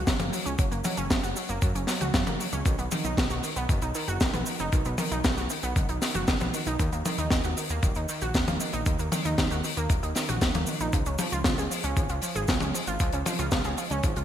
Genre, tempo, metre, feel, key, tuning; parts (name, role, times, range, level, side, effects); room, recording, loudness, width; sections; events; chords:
italo disco; 116 BPM; 4/4; straight; F# major; A4 = 440 Hz
wide unison pluck; arpeggios; 0.0-14.2 s; D#3 to G#4; -32 LUFS; right 2 dB; cassette tape, ping-pong delay
fat analog bass; bass; 0.0-14.2 s; D#1 to F#2; -32 LUFS; equal; tube saturation
electronic kick drum; drums; 0.1-14.1 s; -28 LUFS; equal; overdrive
tight funk drum kit; drums; 0.1-14.2 s; cabasa, hi-hat, snare drum, toms; -29 LUFS; left 1 dB; gated reverb
moderate lush hall reverb, RT60 2.0 s; bright 1980s-style digital production; -25 LUFS; side -10 dB against mid
0.0-14.2 A section
0.0 F#; 2.7 B; 6.8 D#5; 10.9 C#